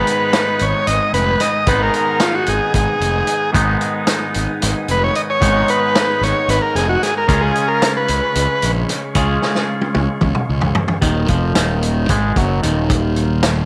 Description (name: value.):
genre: psychedelic rock.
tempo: 225 BPM (eighths).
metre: 7/8.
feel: straight.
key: unclear.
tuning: A4 = 439 Hz.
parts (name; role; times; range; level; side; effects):
combo organ; melody; 0.0-8.7 s; F4 to Eb5; -19 LUFS; equal; slapback echo.
tonewheel organ; sustained chords; 0.0-13.7 s; Gb3 to Eb6; -34 LUFS; equal; none.
twangy electric guitar; riff; 0.0-13.7 s; Eb2 to Ab4; -23 LUFS; equal; phaser.
vintage drum kit; drums; 0.1-13.6 s; hi-hat, kick drum, snare drum, toms; -22 LUFS; equal; none.
fuzz fingered electric bass; bass; 0.6-13.7 s; Eb1 to Db2; -22 LUFS; equal; overdrive.
room: light reverb, small room ambience.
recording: none.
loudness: -17 LUFS.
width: mono.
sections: 0.0-11.0 A section; 11.0-13.7 B section.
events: transistor combo organ solo 0.0-11.0; drum fill 9.4-11.0.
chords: 0.0 Abm; 7.3 Db; 11.0 Ebm.